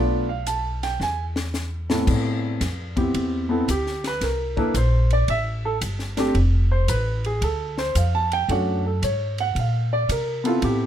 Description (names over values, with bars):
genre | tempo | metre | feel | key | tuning
jazz piano trio | 112 BPM | 4/4 | swing 67% on 8ths | A minor | A4 = 439 Hz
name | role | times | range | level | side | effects
warm grand piano | melody | 0.0-10.9 s | A2 to A5 | -24 LUFS | right 1 dB | none
upright bass | bass | 0.0-10.9 s | F1 to C3 | -23 LUFS | equal | none
compact cocktail drum kit | drums | 0.5-10.8 s | crash cymbal, hi-hat, kick drum, ride cymbal, snare drum | -31 LUFS | left 1 dB | none
room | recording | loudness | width
light reverb | none | -20 LUFS | side -10 dB against mid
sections
0.0-2.1 A section; 2.1-10.9 B section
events
drum fill 1.0-2.1; grand piano solo 2.1-10.9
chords
0.0 Bm7b5; 1.0 E5; 2.1 Am9; 4.2 C13; 6.4 F6; 8.5 F#madd9; 9.6 Bbsus2